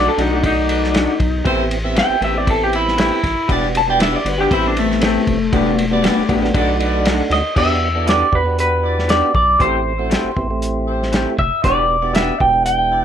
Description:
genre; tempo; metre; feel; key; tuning
straight-eighth soul blues; 118 BPM; 4/4; straight; E minor; A4 = 440 Hz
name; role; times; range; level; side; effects
electric guitar through a small old amp; melody; 0.0-13.0 s; A3 to A5; -17 LUFS; left 1 dB; lush chorus
mellow tonewheel organ; accompaniment; 0.0-13.0 s; G3 to D5; -23 LUFS; right 4 dB; slow rotary speaker
warm horn section; sustained chords; 0.0-13.0 s; G3 to E5; -27 LUFS; left 1 dB; none
electric guitar through a small old amp; stabs; 0.0-12.3 s; D#3 to G4; -24 LUFS; left 4 dB; none
rubbery square bass; bass; 0.0-13.0 s; E1 to E2; -22 LUFS; equal; none
warm soul drum kit; drums; 0.2-12.8 s; crash cymbal, hi-hat, kick drum, ride cymbal, snare drum; -21 LUFS; equal; none
room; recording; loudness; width
little or no reverb; none; -14 LUFS; side -9 dB against mid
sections
0.0-7.6 A section; 7.6-13.0 B section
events
clean electric guitar solo 0.0-7.6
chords
0.0 B7#9; 1.5 Am7; 3.5 Em7; 4.5 Am7; 5.5 Em7; 6.5 B7#9; 7.6 Em7; 9.6 Am7; 11.6 Em7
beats
0.43 0.94 | 1.45 1.96 2.47 2.98 | 3.49 4.00 4.50 5.01 | 5.52 6.03 6.54 7.05 | 7.56 8.07 8.58 9.09 | 9.60 10.11 10.62 11.13 | 11.64 12.15 12.66

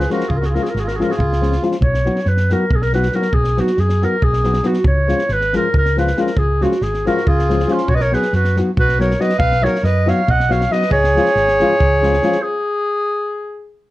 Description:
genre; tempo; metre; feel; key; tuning
balkan folk, Balkan wedding band; 277 BPM (eighths); 7/8; straight; Db mixolydian; A4 = 440 Hz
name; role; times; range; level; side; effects
warm clarinet; melody; 0.0-13.7 s; F4 to Gb5; -18 LUFS; equal; none
accordion; second line; 0.0-1.6, 7.1-12.4 s; Db4 to Eb5; -22 LUFS; right 2 dB; none
nylon-string guitar; accompaniment; 0.0-12.4 s; F3 to Gb4; -20 LUFS; left 2 dB; none
hollow-body short-scale fingered electric bass; bass; 0.0-12.2 s; Ab1 to Gb2; -18 LUFS; equal; none
compact cocktail drum kit; percussion; 0.0-12.4 s; kick drum, snare drum; -23 LUFS; equal; none
room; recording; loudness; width
moderate studio reverb, RT60 0.6 s; worn, warbling old tape, cassette tape, warbly pitch drift; -14 LUFS; side -16 dB against mid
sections
0.0-1.8 A section; 1.8-13.9 A section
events
stop 12.4-13.9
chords
0.0 Db; 1.8 Cb; 4.8 Db; 7.9 Cb; 10.9 Db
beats
0.08 | 0.30 0.52 0.73 0.95 1.17 1.39 1.60 | 1.82 2.04 2.25 2.47 2.69 2.90 3.12 | 3.33 3.55 3.77 3.98 4.20 4.42 4.63 | 4.85 5.07 5.28 5.50 5.71 5.93 6.15 | 6.36 6.58 6.80 7.01 7.23 7.45 7.66 | 7.88 8.10 8.31 8.53 8.75 8.96 9.18 | 9.40 9.61 9.83 10.05 10.26 10.48 10.70 | 10.91 11.13 11.35 11.56 11.78 12.00 12.21 | 12.43 12.65 12.86 13.08 13.30 13.51 13.73

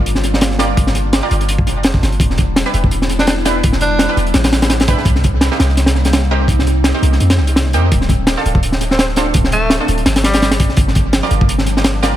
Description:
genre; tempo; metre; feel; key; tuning
drum and bass, jungle; 168 BPM; 4/4; swing 55% on 16ths; unclear; A4 = 445 Hz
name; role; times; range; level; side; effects
warbly tape-like pad; sustained chords; 0.0-12.2 s; F3 to F4; -24 LUFS; equal; chorus, built-in reverb, phaser, vintage 12-bit sampler grit
orchestra-hit-like synth stab; stabs; 0.0-12.2 s; Bb3 to D5; -22 LUFS; right 3 dB; built-in reverb, vintage 12-bit sampler grit, tape echo
warm 808-style bass; bass; 0.0-12.2 s; D1 to F2; -16 LUFS; equal; none
crunchy breakbeat drum kit; drums; 0.1-12.1 s; hi-hat, kick drum, snare drum; -14 LUFS; equal; tape echo
raspy tenor saxophone; melody; 3.2-4.1, 8.9-10.5 s; G3 to D4; -20 LUFS; equal; dub echo
room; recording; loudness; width
light reverb, small room ambience; echo-heavy mix; -11 LUFS; side -12 dB against mid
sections
0.0-12.2 A section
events
none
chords
0.0 Gm7; 2.2 Em7; 5.1 Cm7; 7.9 Dm7; 10.8 Gm7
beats
0.06 0.42 | 0.77 1.13 1.49 1.85 | 2.20 2.56 2.92 3.27 | 3.63 3.99 4.35 4.70 | 5.06 5.42 5.77 6.13 | 6.49 6.85 7.20 7.56 | 7.92 8.27 8.63 8.99 | 9.35 9.70 10.06 10.42 | 10.77 11.13 11.49 11.85

